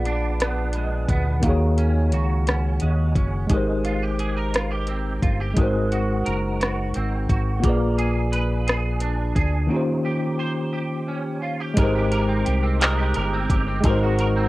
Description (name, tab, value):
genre	slow six-eight R&B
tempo	58 BPM (dotted quarters)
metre	6/8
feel	straight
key	Ab major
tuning	A4 = 442 Hz
part	clean electric guitar	second line	0.0-14.5 s	Bb2 to C5	-28 LUFS	right 3 dB	ensemble chorus, cassette tape
part	tine electric piano	accompaniment	0.0-14.5 s	Bb2 to F5	-25 LUFS	left 1 dB	overdrive, fast stereo tremolo, cassette tape
part	deep dub fingered electric bass	bass	0.0-14.5 s	Gb1 to Eb2	-23 LUFS	equal	none
part	smooth R&B drum kit	drums	0.1-14.3 s	handclaps, hi-hat, kick drum, rim click	-22 LUFS	equal	cassette tape
room	little or no reverb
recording	home recording on cassette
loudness	-20 LUFS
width	side -18 dB against mid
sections	0.0-11.8 A section; 11.8-14.5 B section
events	break 9.7-11.8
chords	0.0 Bb7b9; 1.4 Ebm11; 3.5 Abmaj9; 5.6 Ab9; 7.6 Bb7b9; 9.7 Eb13; 11.8 Abmaj9; 13.8 Ab9